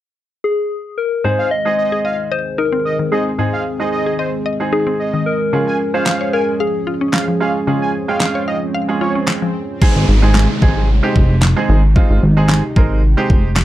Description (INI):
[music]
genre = dance-pop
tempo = 112 BPM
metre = 4/4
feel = straight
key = Ab major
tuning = A4 = 439 Hz
[part]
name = soft struck synth lead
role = melody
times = 0.4-9.3 s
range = Ab4 to Eb5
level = -19 LUFS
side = left 3 dB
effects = chorus, slapback echo
[part]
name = clear baby grand piano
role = accompaniment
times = 1.2-13.5 s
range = Ab3 to G5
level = -21 LUFS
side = right 3 dB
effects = none
[part]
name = chorused pulse-width pad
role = sustained chords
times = 1.2-13.6 s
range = Eb3 to Ab4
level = -23 LUFS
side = right 2 dB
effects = sidechain pumping
[part]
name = mallet-like synth pluck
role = arpeggios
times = 1.2-9.5 s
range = Ab2 to F5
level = -22 LUFS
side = left 4 dB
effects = chorus, sidechain pumping, slapback echo
[part]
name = fat analog lead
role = melody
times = 1.4-9.1 s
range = C5 to Ab5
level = -22 LUFS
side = right 2 dB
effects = sidechain pumping, slapback echo
[part]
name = swell and downlifter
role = sound effects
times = 8.0-13.6 s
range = none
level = -27 LUFS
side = equal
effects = none
[part]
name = pop drum kit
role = drums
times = 6.1-13.6 s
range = crash cymbal, handclaps, kick drum, snare drum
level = -14 LUFS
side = equal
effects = overdrive
[part]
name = plucky analog bass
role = bass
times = 10.0-13.6 s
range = F1 to Ab1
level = -12 LUFS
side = equal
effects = sidechain pumping
[sound]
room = little or no reverb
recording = dry, close 1970s-style studio recording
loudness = -13 LUFS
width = side -14 dB against mid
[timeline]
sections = 0.0-1.2 A section; 1.2-9.8 B section; 9.8-13.6 C section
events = swell 8.0-9.8; kick muted 8.7-9.8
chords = 0.0 N.C.; 1.2 Ab; 5.5 Db; 9.8 Ab